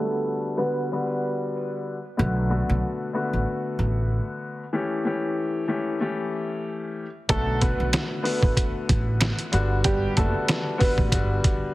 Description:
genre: hip hop, boom-bap hip-hop.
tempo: 94 BPM.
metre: 4/4.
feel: swing 57% on 16ths.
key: B minor.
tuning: A4 = 439 Hz.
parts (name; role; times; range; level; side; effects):
warm upright piano; melody; 0.0-1.1, 7.3-11.3 s; G3 to B4; -29 LUFS; right 2 dB; high-pass filter, low-pass filter, tape echo.
dark grand piano; accompaniment; 0.0-11.7 s; D3 to G4; -27 LUFS; left 2 dB; cassette tape, high-pass filter, low-pass filter.
upright bass; bass; 2.2-11.4 s; F#1 to B1; -25 LUFS; equal; none.
trip hop sampler-style drum kit; drums; 7.3-11.6 s; hi-hat, kick drum, snare drum; -23 LUFS; equal; none.
finger snaps; percussion; 7.9-10.7 s; none; -32 LUFS; right 5 dB; none.
room: light reverb, small room ambience.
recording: heavily compressed radio sound.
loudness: -22 LUFS.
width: side -18 dB against mid.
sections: 0.0-7.3 A section; 7.3-11.7 B section.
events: filter sweep 0.0-7.3; break 4.7-7.3.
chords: 0.0 Gmaj7; 2.2 Bm7; 4.7 A7; 7.3 Bm7; 9.5 Gmaj7.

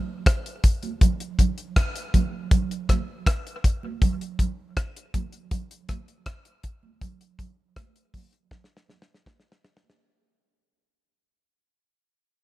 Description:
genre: reggae.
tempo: 80 BPM.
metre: 4/4.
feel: straight.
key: none.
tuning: none.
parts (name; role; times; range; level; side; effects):
damped 70s drum kit; drums; 0.3-10.1 s; hi-hat, kick drum, rim click, snare drum; -21 LUFS; equal; none.
congas; percussion; 0.8-10.0 s; none; -31 LUFS; right 9 dB; dub echo.
room: little or no reverb.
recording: none.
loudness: -23 LUFS.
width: side -17 dB against mid.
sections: 0.0-10.0 A section.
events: fade-out 0.0-10.0; drum fill 8.5-10.0.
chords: none.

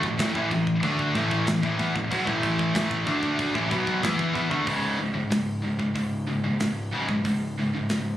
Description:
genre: heavy metal.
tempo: 93 BPM.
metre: 4/4.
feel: straight.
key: C# phrygian.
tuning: A4 = 441 Hz.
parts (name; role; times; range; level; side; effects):
distorted electric guitar; riff; 0.0-4.7 s; A2 to E4; -34 LUFS; right 2 dB; none.
high-gain distorted guitar; riff; 0.0-8.2 s; C#2 to E4; -26 LUFS; left 3 dB; distortion.
scooped high-gain guitar; riff; 0.0-8.2 s; C#2 to E4; -31 LUFS; right 8 dB; distortion.
growling picked electric bass; bass; 0.0-8.2 s; C#1 to E2; -32 LUFS; right 1 dB; overdrive.
modern studio drum kit; drums; 0.0-8.1 s; crash cymbal, hi-hat, kick drum, snare drum; -31 LUFS; right 1 dB; none.
room: little or no reverb.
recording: recorded on a phone in the room, club reverb, compression.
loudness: -23 LUFS.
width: side -12 dB against mid.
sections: 0.0-4.7 A section; 4.7-8.2 B section.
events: none.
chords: 0.0 A5; 4.7 C#5.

